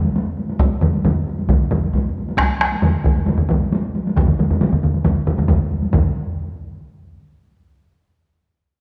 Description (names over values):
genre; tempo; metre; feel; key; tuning
japanese traditional, taiko drum ensemble; 135 BPM; 4/4; straight; none; none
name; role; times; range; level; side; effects
taiko ensemble; percussion; 0.0-6.1 s; none; -25 LUFS; equal; none
taiko ensemble; percussion; 0.6-6.1 s; none; -24 LUFS; equal; none
solo taiko drums; percussion; 0.8-6.4 s; none; -24 LUFS; equal; none
taiko ensemble; percussion; 0.8-6.3 s; none; -23 LUFS; equal; none
room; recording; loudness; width
wet recital hall reverb, RT60 1.9 s; none; -18 LUFS; mono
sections
0.0-5.9 A section; 5.9-7.7 B section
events
none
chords
none